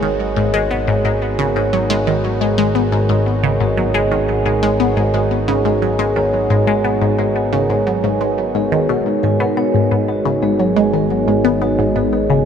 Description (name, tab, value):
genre	ambient, sequencer-driven space music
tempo	88 BPM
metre	4/4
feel	straight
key	G# minor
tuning	A4 = 440 Hz
part	sweeping resonant pad	sustained chords	0.0-12.5 s	G#3 to F#4	-22 LUFS	equal	chorus
part	vibraphone with soft mallets	arpeggios	0.0-12.5 s	F#4 to G#5	-19 LUFS	right 2 dB	auto-pan, tape echo
part	resonant blip pluck	riff	0.0-12.4 s	G#2 to B3	-18 LUFS	left 2 dB	phaser, tape echo
part	fat analog bass	bass	0.0-12.5 s	G#1	-23 LUFS	equal	tube saturation
room	moderate huge ambient reverb, RT60 8.6 s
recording	none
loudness	-14 LUFS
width	side -8 dB against mid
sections	0.0-12.5 A section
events	fade-in on analog synth pad 0.0-12.5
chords	0.0 G#m7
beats	0.20 | 0.88 1.56 2.24 2.92 | 3.61 4.29 4.97 5.65 | 6.33 7.01 7.70 8.38 | 9.06 9.74 10.42 11.11 | 11.79